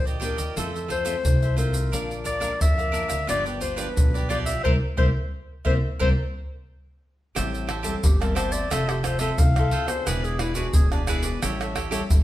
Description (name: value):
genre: samba and choro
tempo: 88 BPM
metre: 4/4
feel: straight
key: F major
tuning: A4 = 437 Hz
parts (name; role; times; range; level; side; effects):
- mellow clarinet; melody; 0.0-11.0 s; D4 to F5; -28 LUFS; left 2 dB; none
- nylon-string guitar; accompaniment; 0.0-12.2 s; F2 to A4; -33 LUFS; left 4 dB; none
- upright bass; bass; 0.0-12.2 s; E1 to F2; -27 LUFS; equal; none
- cavaquinho; accompaniment; 0.1-12.0 s; D4 to A5; -31 LUFS; right 3 dB; none
- tube shaker, pandeiro, surdo and tamborim; percussion; 0.1-12.2 s; none; -24 LUFS; equal; none
room: wet stone room reverb, RT60 1.1 s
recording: band playing live in one room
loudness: -21 LUFS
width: side -14 dB against mid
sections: 0.0-7.4 A section; 7.4-12.2 B section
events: band accent 4.6-7.4; clarinet solo 7.4-12.2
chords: 0.0 Ebmaj7; 0.6 Fmaj7; 1.9 Bb; 3.3 G7; 4.6 C7; 7.4 Am7; 8.7 Fmaj7; 10.1 E7; 11.4 A7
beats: 0.57 1.25 | 1.93 2.61 3.29 3.97 | 4.65 5.33 6.00 6.68 | 7.36 8.04 8.72 9.40 | 10.08 10.76 11.43 12.11